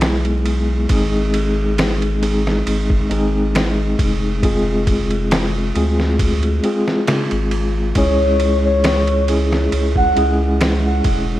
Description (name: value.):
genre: trip hop.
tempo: 68 BPM.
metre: 4/4.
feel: swing 53% on 16ths.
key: unclear.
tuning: A4 = 440 Hz.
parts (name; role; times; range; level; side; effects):
mellow tine electric piano; accompaniment; 0.0-11.4 s; G#3 to G#4; -19 LUFS; left 1 dB; tremolo, vintage 12-bit sampler grit, low-pass filter, tape echo.
round analog bass; bass; 0.0-11.4 s; E1 to D2; -19 LUFS; equal; none.
trip hop sampler-style drum kit; drums; 0.0-11.3 s; kick drum, ride cymbal, snare drum; -21 LUFS; equal; none.
pure breathy sine lead; melody; 8.0-10.4 s; C#5 to F#5; -19 LUFS; left 1 dB; phaser, wide subtle chorus, tape echo.
room: light reverb.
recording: vinyl crackle.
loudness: -15 LUFS.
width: side -14 dB against mid.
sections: 0.0-11.4 A section.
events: filter sweep on tine electric piano 0.0-11.4.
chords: 0.0 E; 0.9 G#; 4.4 Fm; 8.0 C#m.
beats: 0.02 | 0.91 1.79 2.67 3.55 | 4.43 5.32 6.20 7.08 | 7.96 8.85 9.73 10.61.